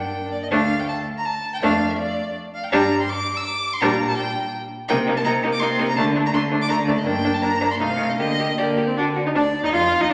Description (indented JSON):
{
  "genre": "quick classical-period movement for string quartet",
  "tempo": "164 BPM",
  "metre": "3/4",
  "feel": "rubato",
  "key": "D minor",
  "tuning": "A4 = 439 Hz",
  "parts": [
    { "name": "clear violin", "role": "melody", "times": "0.0-10.1 s", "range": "D5 to E6", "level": "-27 LUFS", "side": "equal", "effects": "none" },
    { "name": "rich violin", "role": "second line", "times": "0.0-10.1 s", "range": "D4 to G4", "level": "-27 LUFS", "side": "equal", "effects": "none" },
    { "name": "rich viola", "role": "accompaniment", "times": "0.0-10.1 s", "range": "G3 to F4", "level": "-26 LUFS", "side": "equal", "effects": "none" },
    { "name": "rich cello", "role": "bass", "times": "0.0-10.1 s", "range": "D2 to D3", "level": "-29 LUFS", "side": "equal", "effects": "none" }
  ],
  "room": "wet recital hall reverb, RT60 1.8 s",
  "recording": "none",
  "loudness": "-21 LUFS",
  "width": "mono",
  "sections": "0.5-9.4 A section",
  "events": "none",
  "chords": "0.0 Gm; 0.5 D5; 1.6 Dm/F; 2.7 G5; 3.8 Gm/Bb; 4.9 Cm7; 6.0 D5; 7.1 Gm; 7.8 Adim/C; 8.2 Gm/D; 9.0 D; 9.4 Dm"
}